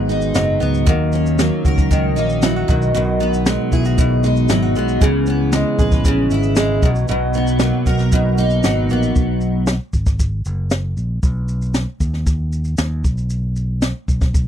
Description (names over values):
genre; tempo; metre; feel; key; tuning
acoustic pop; 116 BPM; 4/4; straight; B major; A4 = 440 Hz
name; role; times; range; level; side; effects
picked steel-string acoustic guitar; accompaniment; 0.0-9.7 s; G#2 to B4; -18 LUFS; equal; double-tracked left and right
nylon-string guitar; arpeggios; 0.0-9.7 s; D#3 to G#4; -26 LUFS; right 6 dB; none
fingered electric bass; bass; 0.0-14.5 s; F#1 to D#2; -20 LUFS; equal; none
jazz brush drum kit; drums; 0.1-14.5 s; kick drum, shaker, snare drum; -18 LUFS; equal; none
room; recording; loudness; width
little or no reverb; dry, close 1970s-style studio recording; -15 LUFS; side -9 dB against mid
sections
0.0-9.2 A section; 9.2-14.5 B section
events
none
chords
0.0 G#m7; 0.9 D#m7; 2.7 B6; 5.0 C#m7; 6.8 Bmaj7; 9.2 B; 13.0 N.C.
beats
0.35 | 0.87 1.39 1.91 2.42 | 2.94 3.46 3.98 4.50 | 5.01 5.53 6.05 6.57 | 7.08 7.60 8.12 8.64 | 9.16 9.68 10.20 10.71 | 11.23 11.75 12.27 12.79 | 13.31 13.83 14.34